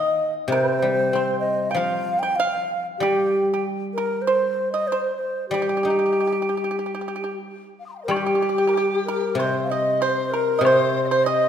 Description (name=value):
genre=chinese traditional, Chinese chamber ensemble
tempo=95 BPM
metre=4/4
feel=rubato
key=G jue mode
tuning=A4 = 441 Hz
part: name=breathy bright low xiao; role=melody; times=0.0-11.5 s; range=G4 to G5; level=-23 LUFS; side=left 1 dB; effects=none
part: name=pipa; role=second line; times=0.0-11.5 s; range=G4 to G5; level=-26 LUFS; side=right 4 dB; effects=none
part: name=guzheng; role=accompaniment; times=0.0-11.5 s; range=C3 to Eb4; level=-26 LUFS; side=left 1 dB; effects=none
part: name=breathy large dizi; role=second line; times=7.8-11.5 s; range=G4 to Eb6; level=-27 LUFS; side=left 5 dB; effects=none
part: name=woodblock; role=percussion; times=8.1-11.4 s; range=none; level=-35 LUFS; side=left 4 dB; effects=none
room=wet concert hall reverb, RT60 1.8 s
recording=minimal, uncompressed stereo recording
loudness=-20 LUFS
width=side -8 dB against mid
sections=0.0-8.1 A section; 8.1-11.5 B section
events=none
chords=none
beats=| 0.52 1.15 1.78 2.41 | 3.04 3.66 4.29 4.92 | 5.54 6.16 6.80 7.46 | 8.10 8.74 9.38 10.02 | 10.64 11.26